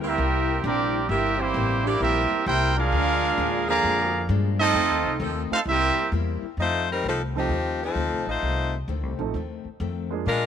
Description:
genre	jazz, big band swing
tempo	131 BPM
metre	4/4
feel	swing 67% on 8ths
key	F mixolydian from 6.6 s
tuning	A4 = 440 Hz
part	warm trombone section	second line	0.0-6.1 s	D3 to G4	-29 LUFS	right 11 dB	none
part	picked old ladder-braced acoustic guitar	accompaniment	0.0-10.5 s	F2 to E4	-34 LUFS	left 14 dB	none
part	mellow saxophone section	sustained chords	0.0-5.4 s	E3 to Bb4	-34 LUFS	equal	none
part	upright bass	bass	0.0-10.5 s	G1 to Bb2	-28 LUFS	left 1 dB	none
part	clear trumpet section	melody	0.1-6.1 s	Bb3 to Bb5	-23 LUFS	right 1 dB	none
part	bright saxophone section	melody	6.6-10.5 s	F3 to C5	-25 LUFS	left 3 dB	none
part	warm upright piano	accompaniment	7.4-10.2 s	F3 to A4	-32 LUFS	right 13 dB	none
room	light reverb, studio reverb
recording	1960s-style stereo with parts hard left and right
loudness	-22 LUFS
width	side -8 dB against mid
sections	0.0-6.6 A section; 6.6-10.5 B section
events	none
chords	0.0 C7; 2.9 Bb7; 4.8 F7; 5.7 C7; 6.6 F7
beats	0.18 0.64 | 1.10 1.55 2.01 2.47 | 2.92 3.38 3.84 4.29 | 4.75 5.21 5.67 6.13 | 6.58 7.04 7.50 7.96 | 8.42 8.88 9.34 9.80 | 10.26

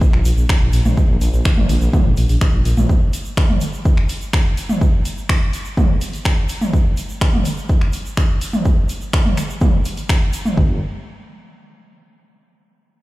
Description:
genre	melodic techno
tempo	125 BPM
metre	4/4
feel	straight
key	unclear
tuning	A4 = 439 Hz
part	electronic kick drum	drums	0.0-10.7 s	none	-16 LUFS	equal	none
part	tube shaker	percussion	0.0-10.6 s	none	-37 LUFS	right 3 dB	none
part	dark detuned saw bass	bass	0.1-2.8, 10.6-10.8 s	G1 to Bb1	-16 LUFS	equal	tube saturation, sidechain pumping
part	deep house drum kit	drums	0.1-10.6 s	finger snaps, hi-hat, toms	-22 LUFS	equal	none
room	digital ambience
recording	played on a big sound system in a bare room, stone room reverb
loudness	-15 LUFS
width	side -18 dB against mid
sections	0.0-10.6 A section; 10.6-12.5 B section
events	none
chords	none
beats	0.01 0.49 | 0.97 1.45 1.93 2.41 | 2.89 3.37 3.85 4.33 | 4.81 5.29 5.77 6.25 | 6.73 7.21 7.69 8.17 | 8.65 9.13 9.61 10.09 | 10.57

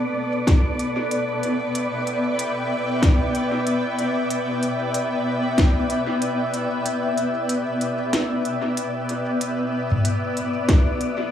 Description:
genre	ambient dub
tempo	94 BPM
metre	4/4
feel	swing 58% on 16ths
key	unclear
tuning	A4 = 440 Hz
part	granular cloud pad	sustained chords	0.0-11.3 s	B3 to G5	-23 LUFS	left 1 dB	built-in reverb
part	wind-like tuned noise texture	texture	0.0-11.3 s	D5	-29 LUFS	right 2 dB	built-in reverb
part	electronic kick drum	drums	0.5-5.7, 10.7-10.8 s	none	-17 LUFS	equal	overdrive
part	organic electronic drum kit	drums	0.5-11.2 s	hi-hat, snare drum, toms	-26 LUFS	equal	dub echo
room	light reverb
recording	echo-heavy mix, small room ambience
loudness	-20 LUFS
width	side -10 dB against mid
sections	0.0-9.4 A section; 9.4-11.3 B section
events	kick drops out 6.9-9.4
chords	0.0 Em/B; 9.4 Bm7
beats	0.47 1.11 | 1.75 2.39 3.03 3.67 | 4.30 4.94 5.58 6.22 | 6.86 7.50 8.13 8.77 | 9.41 10.05 10.69

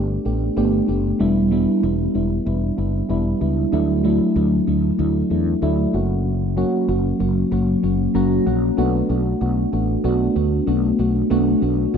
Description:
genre	1980s-style pop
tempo	95 BPM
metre	4/4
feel	swing 55% on 16ths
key	B minor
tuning	A4 = 440 Hz
part	mellow FM electric piano	accompaniment	0.0-12.0 s	F#3 to A#5	-18 LUFS	equal	chorus, phaser
part	mellow fretless electric bass	bass	0.0-12.0 s	E1 to E2	-22 LUFS	equal	analog chorus
room	wet lush hall reverb, RT60 2.9 s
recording	dark, warm production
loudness	-17 LUFS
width	side -7 dB against mid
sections	0.0-8.8 A section; 8.8-12.0 B section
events	FM electric piano fill 7.8-8.8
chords	0.0 Gadd9; 1.2 Em7; 3.7 Dadd9; 5.9 F#; 8.8 Bm7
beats	0.57 | 1.20 1.83 2.46 3.10 | 3.73 4.36 4.99 5.62 | 6.25 6.88 7.52 8.15 | 8.78 9.41 10.04 10.67 | 11.31 11.94

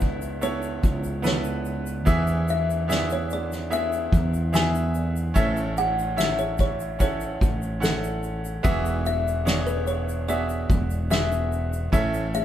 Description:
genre	pop ballad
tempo	73 BPM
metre	4/4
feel	straight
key	unclear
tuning	A4 = 440 Hz
part	kalimba	melody	0.0-12.4 s	A4 to G#5	-29 LUFS	left 2 dB	none
part	bright baby grand piano	accompaniment	0.0-12.4 s	A2 to F#5	-28 LUFS	right 2 dB	none
part	mellow fretless electric bass	bass	0.0-12.4 s	E1 to E2	-27 LUFS	equal	none
part	soft-mallet drum kit	drums	0.0-12.4 s	kick drum, ride cymbal, snare drum	-27 LUFS	equal	none
part	egg shaker	percussion	0.0-12.4 s	none	-43 LUFS	left 4 dB	none
room	moderate studio reverb, RT60 0.8 s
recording	band playing live in one room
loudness	-22 LUFS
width	side -11 dB against mid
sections	0.0-12.4 A section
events	none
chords	0.0 Aadd9/C#; 2.1 E; 5.4 A; 8.6 Eadd9; 11.9 A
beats	0.42 1.25 | 2.07 2.89 3.71 4.53 | 5.36 6.18 7.00 7.82 | 8.64 9.46 10.29 11.11 | 11.93

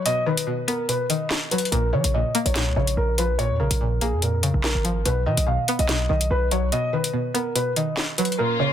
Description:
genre	hip hop, drill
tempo	144 BPM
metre	4/4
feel	half-time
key	unclear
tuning	A4 = 440 Hz
part	string-like resonator pluck	accompaniment	0.0-8.7 s	Bb2 to B3	-26 LUFS	equal	chorus, phaser
part	dark concert grand piano	melody	0.1-8.7 s	Ab4 to F5	-25 LUFS	left 1 dB	ping-pong delay
part	drill drum kit	drums	0.1-8.4 s	handclaps, hi-hat, snare drum	-25 LUFS	left 1 dB	none
part	hard-hitting 808-style bass	bass	1.7-6.7 s	Ab1 to F3	-23 LUFS	equal	none
part	dark symphonic string section	sustained chords	8.4-8.7 s	Bb3 to F4	-24 LUFS	left 2 dB	none
room	light reverb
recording	dense, heavily limited modern master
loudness	-20 LUFS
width	side -10 dB against mid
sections	0.0-8.4 A section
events	break 0.0-1.7, 6.7-8.4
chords	0.0 B; 1.7 Bbm; 5.1 B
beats	| 0.06 0.47 0.89 1.31 | 1.72 2.14 2.56 2.97 | 3.39 3.81 4.22 4.64 | 5.06 5.47 5.89 6.31 | 6.72 7.14 7.56 7.97 | 8.39

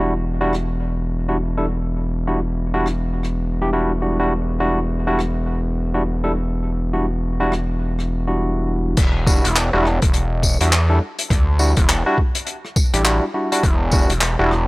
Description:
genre	glitch hop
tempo	103 BPM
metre	4/4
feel	swing 60% on 16ths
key	E minor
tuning	A4 = 440 Hz
part	barky tine electric piano	stabs	0.0-14.5 s	G3 to A4	-22 LUFS	equal	overdrive, sidechain pumping, tape echo
part	gritty driven synth bass	bass	0.0-14.7 s	E1 to E2	-20 LUFS	equal	tube saturation
part	open jazz drum kit	drums	0.5-14.7 s	crash cymbal, handclaps, hi-hat, rim click, tambourine	-22 LUFS	left 1 dB	none
part	electronic kick drum	drums	9.0-14.1 s	none	-17 LUFS	equal	overdrive
room	little or no reverb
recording	dry, gritty hardware recording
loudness	-17 LUFS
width	side -22 dB against mid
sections	0.0-9.0 A section; 9.0-14.7 B section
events	drop 9.0-14.7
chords	0.0 Em9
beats	0.24 0.82 1.40 | 1.98 2.57 3.15 3.73 | 4.31 4.90 5.48 6.06 | 6.64 7.23 7.81 8.39 | 8.97 9.56 10.14 10.72 | 11.30 11.89 12.47 13.05 | 13.63 14.22

